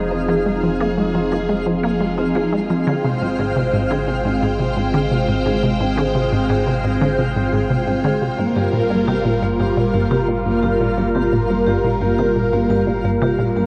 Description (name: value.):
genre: ambient, sequencer-driven space music.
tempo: 87 BPM.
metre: 4/4.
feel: straight.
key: unclear.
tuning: A4 = 440 Hz.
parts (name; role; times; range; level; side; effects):
phased analog pad; sustained chords; 0.0-13.7 s; F3 to G5; -23 LUFS; equal; phaser, chorus, shimmer reverb.
resonant blip pluck; riff; 0.0-13.6 s; G2 to Bb3; -23 LUFS; equal; chorus, delay.
warm sub bass; bass; 0.0-13.7 s; F1 to Ab1; -31 LUFS; equal; none.
twinkling granular texture; texture; 0.0-13.7 s; F4 to F5; -32 LUFS; equal; built-in reverb, shimmer reverb.
vibraphone with medium hard mallets; arpeggios; 0.1-13.7 s; Bb3 to Ab4; -25 LUFS; equal; delay, shimmer reverb.
room: wet huge ambient reverb, RT60 7.1 s.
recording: worn, warbling old tape, cassette tape, warbly pitch drift.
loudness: -18 LUFS.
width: mono.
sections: 0.0-13.7 A section.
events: filter sweep on synth arpeggio sound 0.0-13.7.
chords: 0.0 Fm7; 2.9 Abmaj7; 8.4 Gm7.